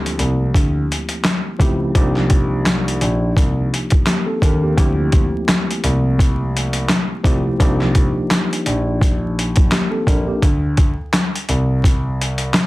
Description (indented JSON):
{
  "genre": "hip hop, boom-bap hip-hop",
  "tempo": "85 BPM",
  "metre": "4/4",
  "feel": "swing 57% on 16ths",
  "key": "D phrygian",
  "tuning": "A4 = 438 Hz",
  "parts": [
    { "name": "tine electric piano", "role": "accompaniment", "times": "0.0-10.4 s", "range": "F3 to Bb4", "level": "-22 LUFS", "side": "equal", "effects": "overdrive, fast stereo tremolo, cassette tape, high-pass filter, low-pass filter" },
    { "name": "dark concert grand piano", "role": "bass", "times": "0.0-12.5 s", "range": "Bb1 to Eb2", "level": "-20 LUFS", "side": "equal", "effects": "none" },
    { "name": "boom bap sampler-style drum kit", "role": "drums", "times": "0.1-12.7 s", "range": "handclaps, hi-hat, kick drum, snare drum", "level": "-16 LUFS", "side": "equal", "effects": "overdrive" }
  ],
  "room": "light reverb",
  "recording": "dense, heavily limited modern master, vinyl crackle",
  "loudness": "-15 LUFS",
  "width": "side -19 dB against mid",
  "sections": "0.0-4.8 A section; 4.8-12.7 B section",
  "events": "none",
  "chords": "0.0 Dm11; 2.0 Cm11; 4.8 Dm11; 7.6 Cm11; 10.4 Csus2",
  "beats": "0.54 1.25 | 1.95 2.66 3.36 4.07 | 4.78 5.48 6.19 6.89 | 7.60 8.30 9.01 9.72 | 10.42 11.13 11.83 12.54"
}